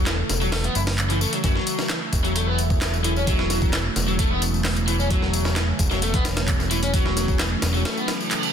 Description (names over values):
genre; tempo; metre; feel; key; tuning
breakbeat, breaks; 131 BPM; 4/4; straight; unclear; A4 = 444 Hz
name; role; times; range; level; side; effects
phased analog pad; sustained chords; 0.0-8.5 s; C#3 to A4; -28 LUFS; right 2 dB; phaser, chorus, sidechain pumping
overdriven electric guitar; riff; 0.0-8.1 s; E3 to E4; -26 LUFS; left 2 dB; ping-pong delay
fat analog bass; bass; 0.0-7.9 s; E1 to F#1; -24 LUFS; equal; none
breakbeat sampler-style drum kit; drums; 0.1-8.5 s; hi-hat, kick drum, snare drum; -25 LUFS; equal; none
electronic handclaps and tambourine; drums; 0.1-8.5 s; none; -30 LUFS; left 2 dB; soft clipping on snare
reverse cymbal; sound effects; 8.0-8.5 s; none; -27 LUFS; right 7 dB; none
room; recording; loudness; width
light reverb; dense, heavily limited modern master; -20 LUFS; side -8 dB against mid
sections
0.0-8.5 A section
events
reverse cymbal 8.0-8.5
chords
0.0 F#m7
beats
0.07 0.53 0.98 | 1.44 1.90 2.36 2.82 | 3.27 3.73 4.19 4.65 | 5.11 5.57 6.02 6.48 | 6.94 7.40 7.86 8.31